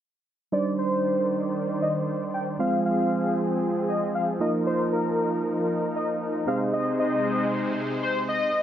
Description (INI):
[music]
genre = pop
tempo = 116 BPM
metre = 4/4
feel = straight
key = unclear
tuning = A4 = 435 Hz
[part]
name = wide unison lead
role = melody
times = 0.5-8.6 s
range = Bb4 to G5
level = -28 LUFS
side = left 2 dB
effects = dub echo
[part]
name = barky tine electric piano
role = accompaniment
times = 0.5-8.5 s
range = G3 to Eb5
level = -28 LUFS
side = right 3 dB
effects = none
[part]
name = supersaw chords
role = sustained chords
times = 0.5-8.6 s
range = C3 to D5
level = -28 LUFS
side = left 1 dB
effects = none
[sound]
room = moderate plate reverb, RT60 2.6 s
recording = low-pass filter, nothing above 11.0 kHz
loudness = -23 LUFS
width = side -10 dB against mid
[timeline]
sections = 0.5-8.6 A section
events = filter sweep 0.5-8.6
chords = 0.5 Cmadd9; 2.6 Fm; 4.4 Bbsus4; 6.5 Ab/C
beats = | 0.53 1.05 1.56 2.08 | 2.60 3.12 3.63 4.15 | 4.67 5.18 5.70 6.22 | 6.74 7.25 7.77 8.29